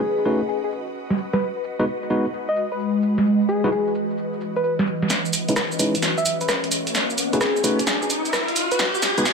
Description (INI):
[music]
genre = UK garage, two-step garage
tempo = 130 BPM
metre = 4/4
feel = swing 67% on 16ths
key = C# minor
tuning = A4 = 440 Hz
[part]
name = soft struck synth lead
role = melody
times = 0.0-8.9 s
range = G#4 to E5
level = -26 LUFS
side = left 2 dB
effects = chorus, ping-pong delay
[part]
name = punchy analog drum machine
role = drums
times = 0.0-9.3 s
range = hi-hat, rim click, shaker, snare drum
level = -22 LUFS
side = right 1 dB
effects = high-pass filter on perc, low-pass filter on perc, high-pass filter on snare, low-pass filter on snare, high-pass filter on hats, low-pass filter on hats, high-pass filter on room, low-pass filter on room
[part]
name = ethereal airy pad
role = texture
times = 0.0-9.3 s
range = E3 to D#5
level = -26 LUFS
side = equal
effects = ensemble chorus, built-in reverb, phaser
[part]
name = tine electric piano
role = stabs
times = 0.3-9.2 s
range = G#3 to B4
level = -24 LUFS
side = equal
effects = vintage 12-bit sampler grit, low-pass filter, ping-pong delay
[part]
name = riser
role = sound effects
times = 6.1-9.3 s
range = none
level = -27 LUFS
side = left 1 dB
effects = none
[sound]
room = moderate lush hall reverb, RT60 2.2 s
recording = high-pass filter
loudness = -19 LUFS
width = side -5 dB against mid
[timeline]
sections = 0.0-5.1 A section; 5.1-9.3 B section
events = build-up 5.1-9.3; drum fill 5.1-9.3; filter sweep on tine electric piano 5.1-9.3; riser 6.1-9.3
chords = 0.0 Badd9; 1.4 G#m7; 3.3 Emaj9; 5.1 C#7sus2; 6.7 Badd9; 8.8 G#m7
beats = 0.02 0.49 0.95 | 1.41 1.87 2.33 2.79 | 3.25 3.72 4.18 4.64 | 5.10 5.56 6.02 6.49 | 6.95 7.41 7.87 8.33 | 8.79 9.26